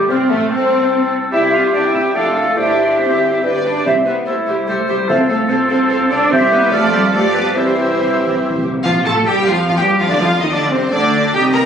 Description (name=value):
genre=quick classical-period movement for symphony orchestra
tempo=144 BPM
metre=3/4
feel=rubato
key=C major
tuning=A4 = 441 Hz
part: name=rich studio violin section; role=melody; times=0.0-11.7 s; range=A3 to G5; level=-28 LUFS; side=left 3 dB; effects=none
part: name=clear clarinet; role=second line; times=0.0-8.4 s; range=G4 to F5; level=-24 LUFS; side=left 1 dB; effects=none
part: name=clear oboe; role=second line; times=0.0-8.6 s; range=D4 to C5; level=-20 LUFS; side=right 1 dB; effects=none
part: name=mellow flute section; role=second line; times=0.0-8.6 s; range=C4 to G5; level=-20 LUFS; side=right 1 dB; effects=none
part: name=dark bassoon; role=accompaniment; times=0.0-8.6 s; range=E3 to C4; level=-22 LUFS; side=right 1 dB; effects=none
part: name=dark studio viola section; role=accompaniment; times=0.0-11.7 s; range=C3 to A4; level=-21 LUFS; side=right 1 dB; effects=none
part: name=mellow French horn section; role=sustained chords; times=0.0-8.6 s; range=A3 to D5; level=-23 LUFS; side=left 2 dB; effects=none
part: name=warm studio cello section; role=bass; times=0.0-11.6 s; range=G3 to Bb4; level=-19 LUFS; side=right 1 dB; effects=none
part: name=warm studio double bass section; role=bass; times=0.0-11.7 s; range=F1 to A2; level=-26 LUFS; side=right 1 dB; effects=none
part: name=warm studio violin section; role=second line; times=0.1-11.6 s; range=A3 to Bb5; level=-22 LUFS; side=left 2 dB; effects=none
part: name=timpani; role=percussion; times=3.9-9.4 s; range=Bb2 to C3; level=-28 LUFS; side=left 1 dB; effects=none
room=wet scoring stage reverb, RT60 1.6 s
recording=recorded on a phone in the room, club reverb, compression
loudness=-12 LUFS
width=side -8 dB against mid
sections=0.0-8.8 A section; 8.8-11.7 B section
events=timpani fill 7.6-8.8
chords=0.1 F; 1.3 C; 2.2 Dm/F; 2.6 C/G; 3.4 G; 3.9 C; 5.1 F/C; 6.3 C; 6.7 Dm/F; 7.1 G7; 7.6 C; 8.8 Fadd9; 10.1 Csus24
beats=| 0.10 0.51 0.91 | 1.32 1.73 2.15 | 2.58 3.01 3.43 | 3.86 4.28 4.69 | 5.10 5.50 5.91 | 6.32 6.72 7.14 | 7.56 7.99 8.42 | 8.84 9.26 9.68 | 10.10 10.51 10.93 | 11.34